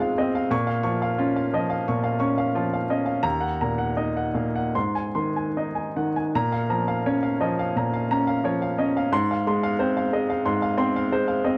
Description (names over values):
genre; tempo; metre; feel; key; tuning
neoclassical minimalist piano; 73-92 BPM; 4/4; rubato; Bb minor; A4 = 439 Hz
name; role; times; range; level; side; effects
clear baby grand piano; solo; 0.0-11.6 s; Eb2 to Db6; -24 LUFS; equal; none
room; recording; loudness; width
moderate studio reverb, RT60 0.6 s; none; -24 LUFS; mono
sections
0.0-6.3 A section; 6.3-11.6 A section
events
none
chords
0.0 Fm/Ab; 0.5 Bbm; 3.2 Ebm; 4.7 Ab; 6.3 Bbm; 9.1 Fm/Ab